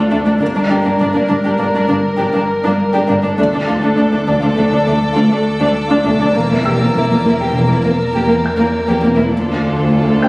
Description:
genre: cinematic, suspense film score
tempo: 101 BPM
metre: 5/4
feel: straight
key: D minor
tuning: A4 = 440 Hz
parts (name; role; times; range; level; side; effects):
- warm chamber violin section; melody; 0.0-10.3 s; A4 to Bb4; -21 LUFS; left 1 dB; none
- rich chamber violin section; second line; 0.0-10.3 s; A3 to G4; -22 LUFS; equal; none
- rich chamber viola section; accompaniment; 0.0-10.3 s; Bb3 to D4; -17 LUFS; equal; none
- deep rumbling drone; drone; 0.0-10.3 s; G1 to E2; -28 LUFS; equal; built-in reverb, phaser
- felt-muted upright piano; texture; 0.0-0.4, 6.7-10.3 s; G5 to A6; -26 LUFS; equal; none
- dark chamber cello section; bass; 0.1-10.3 s; D2 to G2; -17 LUFS; equal; none
- warm studio double bass section; bass; 0.1-10.3 s; E1 to D2; -21 LUFS; equal; none
- warm chamber violin section; texture; 3.4-9.0 s; A5 to E6; -29 LUFS; equal; none
room: moderate scoring stage reverb, RT60 1.8 s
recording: recorded on a phone in the room, studio reverb, compression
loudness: -12 LUFS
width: side -24 dB against mid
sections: 0.0-10.3 A section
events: none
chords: 0.4 Gm; 3.4 D5; 6.3 Edim; 9.3 Dm

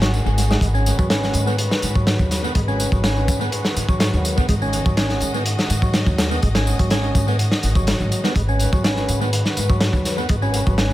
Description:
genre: breakbeat, breaks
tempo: 124 BPM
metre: 4/4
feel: straight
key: G# minor pentatonic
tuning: A4 = 440 Hz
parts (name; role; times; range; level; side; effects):
- clear symphonic string section; sustained chords; 0.0-10.9 s; D#3 to D#5; -28 LUFS; left 1 dB; sidechain pumping
- percussive tonewheel organ; riff; 0.0-10.9 s; F#3 to C#4; -25 LUFS; right 1 dB; overdrive, stopped rotary speaker, tube saturation, analog delay
- upright bass; bass; 0.0-10.9 s; G#1 to G#2; -21 LUFS; equal; none
- crunchy breakbeat drum kit; drums; 0.0-10.9 s; hi-hat, kick drum, snare drum; -20 LUFS; equal; analog delay
- tambourine; drums; 0.0-10.9 s; none; -33 LUFS; right 1 dB; analog delay
room: light reverb, small room ambience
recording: echo-heavy mix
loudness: -17 LUFS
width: side -15 dB against mid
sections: 0.0-10.9 A section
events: none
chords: 0.0 G#m7

